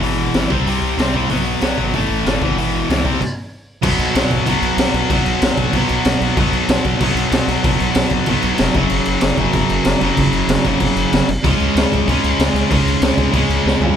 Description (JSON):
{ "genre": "punk rock", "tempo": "189 BPM", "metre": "4/4", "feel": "straight", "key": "unclear", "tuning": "A4 = 438 Hz", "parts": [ { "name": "sludgy distorted guitar", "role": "riff", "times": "0.0-14.0 s", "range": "E2 to C#4", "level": "-20 LUFS", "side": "right 10 dB", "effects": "overdrive" }, { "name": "tight distorted guitar", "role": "riff", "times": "0.0-14.0 s", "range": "E2 to C#4", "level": "-19 LUFS", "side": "left 8 dB", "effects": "distortion" }, { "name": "gritty driven synth bass", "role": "bass", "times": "0.0-13.9 s", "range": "F1 to C#2", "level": "-23 LUFS", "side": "equal", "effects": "none" }, { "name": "raw garage drum kit", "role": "drums", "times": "0.0-13.9 s", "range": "crash cymbal, hi-hat, kick drum, snare drum, toms", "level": "-18 LUFS", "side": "equal", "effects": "none" } ], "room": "light reverb", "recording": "band playing live in one room", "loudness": "-14 LUFS", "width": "side -8 dB against mid", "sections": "0.0-3.8 A section; 3.8-14.0 B section", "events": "stop 3.2-3.8; drum fill 13.7-14.0", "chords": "0.0 E/G#; 0.5 C5; 1.3 B5; 1.9 A5; 2.4 E/G#; 3.0 C5; 3.8 B5; 8.7 F#5; 11.4 C#5" }